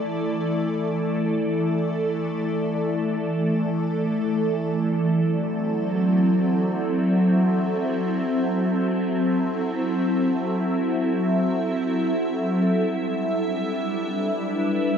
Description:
ambient; free time; A4 = 440 Hz
evolving wavetable pad; sustained chords; 0.0-15.0 s; E3 to E5; -21 LUFS; equal; ensemble chorus, built-in reverb, phaser
soft synth bell; arpeggios; 6.0-15.0 s; A4 to C5; -39 LUFS; right 2 dB
wet cathedral reverb, RT60 5.4 s; in a vast, echoing space, cassette tape; -21 LUFS; side -7 dB against mid
0.0-5.0 A section; 5.0-15.0 B section
filter sweep on ambient pad 0.0-5.0
0.0 Dsus2; 5.0 F#m7b5; 12.6 Em7
free time

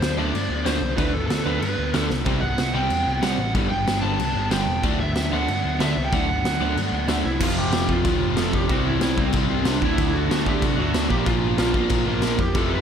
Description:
punk rock; 187 BPM; 4/4; straight; A4 = 441 Hz
lead guitar through a small cranked amp; melody; 0.0-12.8 s; C4 to A5; -27 LUFS; right 2 dB; overdrive, slapback echo, tape echo
thick fuzz guitar; riff; 0.0-12.8 s; F2 to E4; -30 LUFS; equal; distortion, slapback echo
overdriven picked electric bass; bass; 0.0-12.8 s; E1 to C3; -27 LUFS; left 1 dB
raw garage drum kit; drums; 0.0-12.6 s; crash cymbal, kick drum, snare drum; -25 LUFS; equal
cranked stack guitar; riff; 0.2-12.8 s; F2 to D4; -29 LUFS; left 11 dB; overdrive, slapback echo
overdriven semi-hollow guitar; riff; 0.2-12.8 s; F2 to D4; -28 LUFS; right 10 dB; slapback echo
light reverb, studio ambience; -20 LUFS; side -8 dB against mid
0.0-7.4 A section; 7.4-12.8 B section
drum fill 2.1
0.0 D; 2.3 C; 3.5 G; 4.8 D; 7.4 F; 8.7 C; 9.8 D; 11.1 Bb
0.01 0.33 0.66 | 0.98 1.30 1.62 1.94 | 2.26 2.58 2.91 3.23 | 3.55 3.87 4.19 4.51 | 4.84 5.16 5.48 5.80 | 6.12 6.45 6.77 7.09 | 7.41 7.73 8.05 8.37 | 8.70 9.02 9.34 9.66 | 9.98 10.30 10.62 10.94 | 11.26 11.58 11.90 12.22 | 12.54

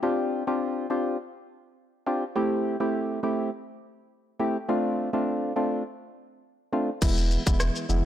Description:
dancehall; 103 BPM; 4/4; straight; A minor; A4 = 440 Hz
percussive organ stab; accompaniment; 0.0-8.1 s; E3 to G4; -26 LUFS; equal; chorus
saturated sub bass; bass; 7.0-8.0 s; E1 to F1; -24 LUFS; equal
island pop drum kit; drums; 7.0-8.0 s; crash cymbal, kick drum, rim click, shaker; -26 LUFS; equal
light reverb, digital ambience; -25 LUFS; side -11 dB against mid
0.0-7.0 A section; 7.0-8.1 B section
0.0 G7sus4; 2.4 Am7; 4.7 F6; 7.0 E
| 0.03 0.61 1.19 1.78 | 2.36 2.94 3.52 4.11 | 4.69 5.27 5.85 6.44 | 7.02 7.60

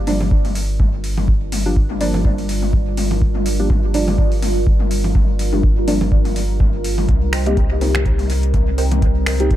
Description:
dub techno; 124 BPM; 4/4; swing 56% on 16ths; G minor; A4 = 443 Hz
deep dark ambient pad; sustained chords; 0.6-9.6 s; G3 to Bb4; -26 LUFS; right 1 dB; chorus, built-in reverb, sidechain pumping
soft dub sub bass; bass; 0.0-9.6 s; G1 to C2; -20 LUFS; equal; sidechain pumping
deep mellow chord stab; stabs; 0.1-9.5 s; F3 to G4; -22 LUFS; equal; chorus, phaser, sidechain pumping, dub echo
booming analog drum machine; drums; 0.1-9.6 s; finger snaps, hi-hat; -28 LUFS; equal; dub echo
electronic toms and congas; percussion; 0.1-9.4 s; -27 LUFS; left 3 dB; overdrive, sidechain pumping on toms, sidechain pumping on perc, dub echo
electronic kick drum; drums; 0.3-9.6 s; -17 LUFS; equal
filtered dub chord stab; riff; 7.3-9.4 s; Bb4 to G5; -30 LUFS; right 5 dB; phaser, sidechain pumping, dub echo
little or no reverb; echo-heavy mix; -15 LUFS; side -13 dB against mid
0.0-9.6 A section
0.0 Gm7; 7.1 Cm7
0.31 0.80 | 1.28 1.77 2.25 2.73 | 3.22 3.70 4.18 4.67 | 5.15 5.64 6.12 6.60 | 7.09 7.57 8.06 8.54 | 9.02 9.51

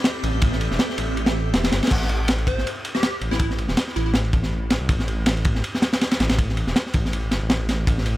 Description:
drum and bass, jungle; 161 BPM; 4/4; swing 55% on 16ths; A minor; A4 = 440 Hz
granular cloud pad; sustained chords; 0.0-0.9 s; C4 to E5; -31 LUFS; right 2 dB; built-in reverb
crunchy breakbeat drum kit; drums; 0.0-8.2 s; crash cymbal, kick drum, ride cymbal, snare drum; -21 LUFS; equal
drifting glass-harmonics texture; texture; 0.0-1.9 s; D5 to G6; -37 LUFS; left 1 dB; chorus, built-in reverb
dark detuned saw bass; bass; 0.2-8.2 s; E1 to C2; -24 LUFS; equal
plucky unison lead; melody; 2.5-4.1 s; E4 to C5; -32 LUFS; equal; phaser, dub echo
small room ambience; -19 LUFS; side -16 dB against mid
0.0-1.9 A section; 1.9-8.2 A section
drop 0.0-1.9, 1.9-8.2
0.0 Am7; 1.9 N.C.
0.05 | 0.42 0.79 1.17 1.54 | 1.91 2.28 2.66 3.03 | 3.40 3.77 4.15 4.52 | 4.89 5.26 5.64 6.01 | 6.38 6.75 7.13 7.50 | 7.87

